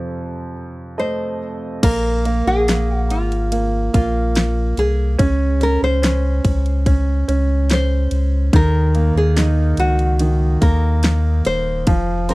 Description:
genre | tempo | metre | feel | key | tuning
pop ballad | 72 BPM | 4/4 | straight | Bb minor | A4 = 437 Hz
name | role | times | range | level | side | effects
nylon-string guitar | melody | 0.0-12.3 s | F4 to C5 | -23 LUFS | left 1 dB | none
warm concert grand piano | accompaniment | 0.0-12.3 s | F2 to Eb5 | -22 LUFS | right 2 dB | none
warm sub bass | bass | 1.8-12.3 s | Eb1 to Eb2 | -18 LUFS | equal | none
pop drum kit | drums | 1.8-12.3 s | crash cymbal, kick drum, ride cymbal, snare drum | -17 LUFS | equal | none
room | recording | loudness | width
little or no reverb | dry, close 1970s-style studio recording | -15 LUFS | side -21 dB against mid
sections
0.0-1.8 A section; 1.8-12.3 B section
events
grand piano fill 0.6-1.8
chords
0.0 F; 1.8 Bb5; 5.2 Bbmadd9/Db (rootless); 8.5 Ebm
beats
0.13 0.98 | 1.83 2.68 3.52 4.36 | 5.20 6.03 6.86 7.70 | 8.53 9.36 10.20 11.04 | 11.88

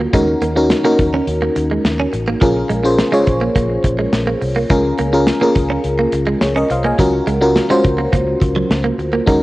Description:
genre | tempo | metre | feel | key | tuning
1980s-style pop | 105 BPM | 4/4 | straight | unclear | A4 = 440 Hz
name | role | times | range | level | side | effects
FM electric piano | accompaniment | 0.0-9.4 s | Db4 to Ab5 | -16 LUFS | left 1 dB | chorus
direct-recorded clean electric guitar | riff | 0.0-9.4 s | F3 to Db4 | -21 LUFS | right 3 dB | lush chorus, analog delay
vintage muted fingered electric bass | bass | 0.0-9.4 s | A1 to Eb2 | -21 LUFS | equal | none
modern studio drum kit | drums | 0.1-9.4 s | hi-hat, kick drum, snare drum | -19 LUFS | equal | cassette tape
room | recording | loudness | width
light reverb, small room reverb | home recording on cassette | -13 LUFS | side -18 dB against mid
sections
0.0-9.4 A section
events
none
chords
0.1 Ebm7; 2.4 Bbm7; 4.7 Db6; 7.0 Gbmaj7/Db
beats
| 0.13 0.70 1.27 1.85 | 2.42 2.99 3.56 4.13 | 4.70 5.28 5.85 6.42 | 6.99 7.56 8.13 8.70 | 9.28

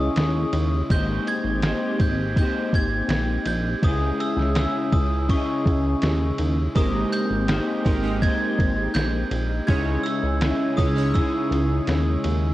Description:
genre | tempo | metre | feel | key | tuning
indie pop, bedroom pop | 82 BPM | 4/4 | straight | Ab major | A4 = 440 Hz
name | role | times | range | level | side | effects
glockenspiel with hard plastic mallets | melody | 0.0-12.2 s | Db6 to Ab6 | -29 LUFS | right 2 dB | analog chorus, cassette tape
electric guitar through a small old amp | accompaniment | 0.0-12.5 s | Db3 to Eb5 | -27 LUFS | left 2 dB | ensemble chorus, warbly pitch drift
phased analog pad | sustained chords | 0.0-12.5 s | Db3 to Ab4 | -31 LUFS | right 1 dB | phaser, chorus
chorused synth bass | bass | 0.0-12.5 s | Ab1 to Eb2 | -24 LUFS | equal | none
lo-fi sampler-style drum kit | drums | 0.2-12.4 s | kick drum, ride cymbal, snare drum | -25 LUFS | equal | cassette tape
chorused retro synth keys | accompaniment | 6.8-12.5 s | Ab3 to Db5 | -29 LUFS | right 4 dB | phaser
room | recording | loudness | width
digital ambience | home recording on cassette | -20 LUFS | side -16 dB against mid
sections
0.0-12.5 A section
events
none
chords
0.0 Dbmadd9; 0.9 Abmaj9; 3.8 Dbmadd9; 6.8 Abmaj9; 9.7 Dbmadd9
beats
0.17 | 0.90 1.64 2.37 3.10 | 3.83 4.56 5.29 6.03 | 6.76 7.49 8.22 8.95 | 9.69 10.42 11.15 11.88

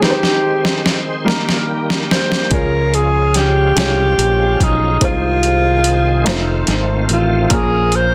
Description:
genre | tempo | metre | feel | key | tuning
slow gospel | 48 BPM (dotted quarters) | 6/8 | straight | Ab major | A4 = 440 Hz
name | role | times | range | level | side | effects
breathy alto saxophone | melody | 0.0-8.1 s | Eb4 to C5 | -19 LUFS | equal | none
warm upright piano | accompaniment | 0.0-8.1 s | Bb2 to Db5 | -24 LUFS | equal | none
bright tonewheel organ | sustained chords | 0.0-8.1 s | Eb3 to C5 | -26 LUFS | equal | fast rotary speaker, overdrive, chorus vibrato
boom bap sampler-style drum kit | drums | 0.0-8.1 s | hi-hat, kick drum, snare drum | -20 LUFS | equal | overdrive
fingered electric bass | bass | 2.5-8.1 s | F1 to Db2 | -20 LUFS | equal | none
room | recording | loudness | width
light reverb | dense, heavily limited modern master | -15 LUFS | mono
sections
0.0-8.1 A section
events
drum fill 0.0-2.5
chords
0.0 Ab/Eb; 1.3 Eb; 2.5 Db; 5.0 Ab/C; 6.3 F7; 7.5 Bbm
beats
| 0.01 1.26 | 2.52 3.77 | 5.02 6.27 | 7.51

